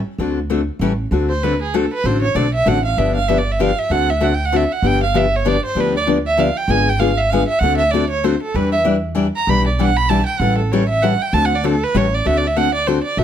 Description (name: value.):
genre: acoustic string swing (jazz manouche).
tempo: 194 BPM.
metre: 3/4.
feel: swing 58% on 8ths.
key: D mixolydian.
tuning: A4 = 437 Hz.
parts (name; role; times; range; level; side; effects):
picked steel-string acoustic guitar; accompaniment; 0.2-13.2 s; D3 to B4; -19 LUFS; left 4 dB; none.
upright bass; bass; 0.2-13.2 s; G1 to E2; -21 LUFS; right 1 dB; none.
rich violin; melody; 1.3-13.2 s; G#4 to B5; -18 LUFS; right 3 dB; none.
room: light reverb.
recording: none.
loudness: -15 LUFS.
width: side -9 dB against mid.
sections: 0.0-1.1 A section; 1.1-12.3 B section.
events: violin solo 1.1-13.2.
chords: 0.2 D7; 0.8 A7; 1.1 D7; 3.0 G7; 3.9 D7; 4.8 G7; 6.7 G#dim7; 7.6 D7; 8.5 Em7; 10.4 A7; 11.3 D7; 11.9 A7; 12.3 D7.